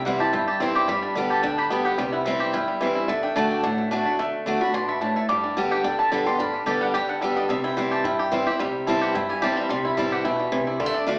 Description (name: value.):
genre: bluegrass.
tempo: 218 BPM.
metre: 4/4.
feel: swing 54% on 8ths.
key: unclear.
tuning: A4 = 440 Hz.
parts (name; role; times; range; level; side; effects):
picked steel-string acoustic guitar; accompaniment; 0.0-11.2 s; G2 to G4; -24 LUFS; equal; none.
bluegrass banjo; arpeggios; 0.0-11.2 s; D3 to G4; -26 LUFS; equal; none.
mandolin; stabs; 0.0-11.2 s; C5 to D6; -27 LUFS; equal; none.
upright bass; bass; 0.0-11.2 s; G1 to G2; -44 LUFS; equal; none.
room: wet large studio reverb, RT60 0.8 s.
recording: band playing live in one room, AM radio sound.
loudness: -21 LUFS.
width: side -30 dB against mid.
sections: 0.0-11.2 A section.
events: mandolin solo 0.0-11.2.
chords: 0.0 C; 0.9 G; 2.0 C; 3.1 D; 5.3 G; 7.5 C.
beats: 0.06 0.33 0.61 | 0.88 1.16 1.44 1.71 | 1.99 2.26 2.54 2.81 | 3.09 3.36 3.64 3.92 | 4.19 4.47 4.74 5.02 | 5.29 5.57 5.84 6.12 | 6.39 6.67 6.95 7.22 | 7.50 7.77 8.05 8.32 | 8.60 8.87 9.15 9.42 | 9.70 9.97 10.25 10.52 | 10.80 11.08.